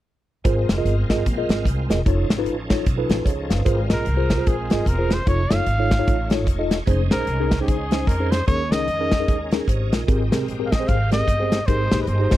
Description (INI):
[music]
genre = uptempo gospel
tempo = 150 BPM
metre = 4/4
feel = swing 60% on 8ths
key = Ab major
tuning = A4 = 440 Hz
[part]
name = bright tonewheel organ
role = sustained chords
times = 0.4-12.4 s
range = F3 to Eb5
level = -32 LUFS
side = right 2 dB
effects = slow rotary speaker, chorus vibrato
[part]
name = upright bass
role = bass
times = 0.4-12.4 s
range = Fb1 to F2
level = -23 LUFS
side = equal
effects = none
[part]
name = mellow tine electric piano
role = accompaniment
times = 0.5-12.3 s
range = Ab2 to F5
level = -25 LUFS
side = equal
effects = medium stereo tremolo
[part]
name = modern studio drum kit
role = drums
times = 0.5-12.4 s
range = hi-hat, kick drum, snare drum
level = -21 LUFS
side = equal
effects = none
[part]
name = warm trumpet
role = melody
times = 3.9-12.4 s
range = G4 to F5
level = -25 LUFS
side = equal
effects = none
[sound]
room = small room ambience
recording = dry, close 1970s-style studio recording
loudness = -18 LUFS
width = side -14 dB against mid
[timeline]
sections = 0.5-3.7 A section; 3.7-12.4 B section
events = none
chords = 0.5 Ab69; 2.1 F7alt; 3.7 Ab69; 5.3 F7alt; 6.9 Bbm11/F; 8.5 Eb7sus4; 10.1 Abmaj9